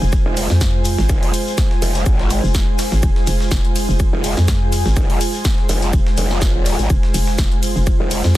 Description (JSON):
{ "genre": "bass house", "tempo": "124 BPM", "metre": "4/4", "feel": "swing 54% on 16ths", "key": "F minor", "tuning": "A4 = 439 Hz", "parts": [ { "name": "dark analog pad", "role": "sustained chords", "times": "0.0-8.4 s", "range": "Ab3 to C5", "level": "-26 LUFS", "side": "right 2 dB", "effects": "chorus, sidechain pumping" }, { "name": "hollow knocking FM bass", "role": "bass", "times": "0.0-8.4 s", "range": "F1 to F2", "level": "-17 LUFS", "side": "equal", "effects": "overdrive, sidechain pumping" }, { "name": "shekere", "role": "percussion", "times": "0.0-8.3 s", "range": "none", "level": "-32 LUFS", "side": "left 6 dB", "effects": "none" }, { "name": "ethereal airy pad", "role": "texture", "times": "0.0-8.4 s", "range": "F4 to Ab5", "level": "-26 LUFS", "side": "equal", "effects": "ensemble chorus, built-in reverb, sidechain pumping" }, { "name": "big-room dance drum kit", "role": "drums", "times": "0.1-8.3 s", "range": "hi-hat, ride cymbal, snare drum", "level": "-26 LUFS", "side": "right 1 dB", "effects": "none" }, { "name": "breakbeat sampler-style drum kit", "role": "drums", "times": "0.1-8.3 s", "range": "hi-hat, shaker, snare drum", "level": "-32 LUFS", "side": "left 3 dB", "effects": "sidechain pumping on perc, high-pass filter on perc, high-pass filter on snare, sidechain pumping on hats, high-pass filter on hats" }, { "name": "electronic kick drum", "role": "drums", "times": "0.1-8.0 s", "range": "none", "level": "-17 LUFS", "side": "equal", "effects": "none" }, { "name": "growl bass", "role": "bass", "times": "0.3-8.2 s", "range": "Eb1 to Ab1", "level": "-20 LUFS", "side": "equal", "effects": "chorus, sidechain pumping" } ], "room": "little or no reverb", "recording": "dense, heavily limited modern master", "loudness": "-14 LUFS", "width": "side -15 dB against mid", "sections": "0.0-8.4 A section", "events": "none", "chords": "0.0 Fm" }